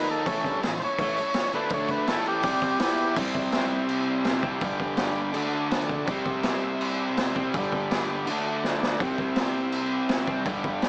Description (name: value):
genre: garage rock duo or trio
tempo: 165 BPM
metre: 4/4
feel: straight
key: unclear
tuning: A4 = 440 Hz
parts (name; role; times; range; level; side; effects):
- overdriven combo organ; melody; 0.0-3.2 s; C#4 to C#5; -27 LUFS; equal; none
- overdriven combo organ; sustained chords; 0.0-10.9 s; A3 to E5; -36 LUFS; equal; none
- fuzz guitar; riff; 0.0-10.9 s; G2 to E4; -27 LUFS; equal; distortion
- raw garage drum kit; drums; 0.1-10.9 s; crash cymbal, kick drum, snare drum; -28 LUFS; equal; none
room: moderate small room reverb, RT60 0.5 s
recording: small speaker sound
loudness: -24 LUFS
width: side -35 dB against mid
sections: 0.0-3.2 A section; 3.2-10.9 B section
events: transistor combo organ solo 0.0-3.2; drum fill 8.6-9.0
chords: 0.3 A; 1.7 D5; 2.1 A; 2.4 C5; 2.8 E5; 3.2 C; 4.6 G; 5.4 D; 6.1 C; 7.5 G; 8.3 D; 9.0 C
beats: | 0.26 0.62 0.98 1.35 | 1.71 2.08 2.44 2.81 | 3.17 3.53 3.90 4.26 | 4.63 4.99 5.36 5.72 | 6.08 6.45 6.81 7.18 | 7.54 7.91 8.27 8.64 | 9.00 9.37 9.73 10.10 | 10.46 10.83